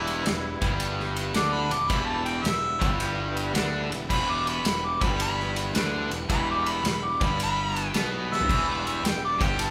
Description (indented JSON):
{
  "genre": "blues rock power trio and southern rock",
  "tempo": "109 BPM",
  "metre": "4/4",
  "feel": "swing 67% on 8ths",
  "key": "E minor",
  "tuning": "A4 = 441 Hz",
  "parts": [
    { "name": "warm harmonica", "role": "melody", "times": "0.0-9.7 s", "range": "E4 to D6", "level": "-31 LUFS", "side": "equal", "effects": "overdrive" },
    { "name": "overdriven tonewheel organ", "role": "sustained chords", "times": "0.0-9.7 s", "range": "E3 to F4", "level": "-40 LUFS", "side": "equal", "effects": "slow rotary speaker" },
    { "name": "distorted electric guitar", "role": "riff", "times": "0.0-9.7 s", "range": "E2 to D4", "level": "-32 LUFS", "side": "equal", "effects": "overdrive" },
    { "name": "fuzz fingered electric bass", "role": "bass", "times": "0.0-9.7 s", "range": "E1 to D2", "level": "-35 LUFS", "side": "equal", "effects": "overdrive" },
    { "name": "big rock drum kit", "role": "drums", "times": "0.1-9.7 s", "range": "crash cymbal, kick drum, ride cymbal, snare drum, toms", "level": "-32 LUFS", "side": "equal", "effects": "none" }
  ],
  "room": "wet large studio reverb, RT60 1.1 s",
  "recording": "band playing live in one room",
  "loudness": "-26 LUFS",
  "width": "mono",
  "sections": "0.0-9.7 A section",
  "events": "harmonica solo 0.0-9.7; drum fill 8.2",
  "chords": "0.0 Em"
}